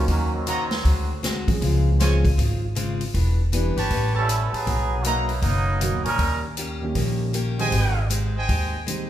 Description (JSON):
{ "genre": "jazz, big band swing", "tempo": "157 BPM", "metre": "4/4", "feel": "swing 64% on 8ths", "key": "unclear", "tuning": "A4 = 439 Hz", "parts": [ { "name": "muted trombone section", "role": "second line", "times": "0.0-1.4, 4.2-6.4 s", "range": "D#3 to A#4", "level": "-27 LUFS", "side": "right 3 dB", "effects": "none" }, { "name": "warm concert grand piano", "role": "accompaniment", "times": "0.0-9.1 s", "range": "D#3 to A#4", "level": "-30 LUFS", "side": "right 3 dB", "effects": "none" }, { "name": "upright bass", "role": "bass", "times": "0.0-9.1 s", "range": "E1 to A#2", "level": "-23 LUFS", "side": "equal", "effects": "none" }, { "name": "picked acoustic archtop guitar", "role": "accompaniment", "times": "0.1-9.1 s", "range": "A2 to G4", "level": "-31 LUFS", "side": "left 3 dB", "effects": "none" }, { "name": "swinging big-band drum kit", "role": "drums", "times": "0.1-9.0 s", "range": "hi-hat, kick drum, snare drum", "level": "-28 LUFS", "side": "equal", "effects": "none" }, { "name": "bright trumpet section", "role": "stabs", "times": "0.5-5.2, 7.6-8.8 s", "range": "E#4 to A#5", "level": "-28 LUFS", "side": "right 1 dB", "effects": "none" } ], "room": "moderate recital hall reverb, RT60 1.7 s", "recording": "recorded in a church or concert hall", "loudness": "-20 LUFS", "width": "side -12 dB against mid", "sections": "0.0-9.1 A section", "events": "trombone section solo 0.0-9.1", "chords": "0.1 D#m7; 0.9 D7#11; 1.6 C#maj7; 3.1 Em7; 3.9 A9; 4.7 Bmaj7; 6.2 D#7; 7.7 G#maj7" }